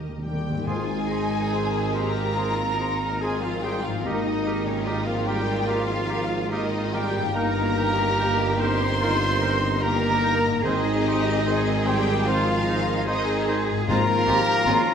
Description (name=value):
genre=classical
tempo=73 BPM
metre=4/4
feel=rubato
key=Ab major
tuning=A4 = 440 Hz
part: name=rich studio violin section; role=melody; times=0.0-14.9 s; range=Db5 to C6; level=-32 LUFS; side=left 1 dB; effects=none
part: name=rich studio viola section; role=accompaniment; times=0.0-14.7 s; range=Eb3 to Bb4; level=-31 LUFS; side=right 1 dB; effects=none
part: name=concert harp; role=arpeggios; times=0.0-14.9 s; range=G2 to Bb4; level=-34 LUFS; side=left 5 dB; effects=none
part: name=rich studio double bass section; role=bass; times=0.0-14.7 s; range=G1 to Eb2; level=-30 LUFS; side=right 3 dB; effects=none
part: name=timpani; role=percussion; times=0.0-5.2, 10.6-14.9 s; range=Ab2 to Eb3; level=-33 LUFS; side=left 1 dB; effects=none
part: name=large flute ensemble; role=second line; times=0.2-14.9 s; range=Db5 to C6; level=-32 LUFS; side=left 2 dB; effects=none
part: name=mellow French horn section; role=sustained chords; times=0.2-14.9 s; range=Db3 to C4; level=-31 LUFS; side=left 4 dB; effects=none
part: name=bright trumpet section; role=stabs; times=0.2-14.9 s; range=Db4 to C5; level=-29 LUFS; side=right 1 dB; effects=none
part: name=bright clarinet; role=second line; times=0.7-14.8 s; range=Eb4 to Ab4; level=-36 LUFS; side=left 1 dB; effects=none
part: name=mellow cor anglais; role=second line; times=0.7-14.8 s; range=Bb4 to C5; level=-34 LUFS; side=right 2 dB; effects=none
part: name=rich studio violin section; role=second line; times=0.7-14.7 s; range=Eb4 to Bb4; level=-34 LUFS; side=left 4 dB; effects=none
part: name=bright trombone section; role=sustained chords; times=0.7-14.9 s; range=Eb3 to Db4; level=-34 LUFS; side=right 4 dB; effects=none
part: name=rich studio cello section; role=bass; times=0.7-14.9 s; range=Eb4 to Bb4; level=-32 LUFS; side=right 1 dB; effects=none
part: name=warm tuba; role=bass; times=0.7-14.8 s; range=G1 to Ab1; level=-32 LUFS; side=right 4 dB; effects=none
room=wet scoring stage reverb, RT60 1.5 s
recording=none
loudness=-21 LUFS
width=side -7 dB against mid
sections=0.7-14.9 A section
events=timpani fill 0.0-0.7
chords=0.0 Eb; 0.7 Ab; 4.0 Eb/Ab; 7.4 Eb/G; 10.6 Ab; 13.9 Fm/Ab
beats=| 0.68 1.53 2.37 3.22 | 4.05 4.86 5.68 6.51 | 7.35 8.18 9.00 9.81 | 10.64 11.46 12.27 13.08 | 13.89 14.66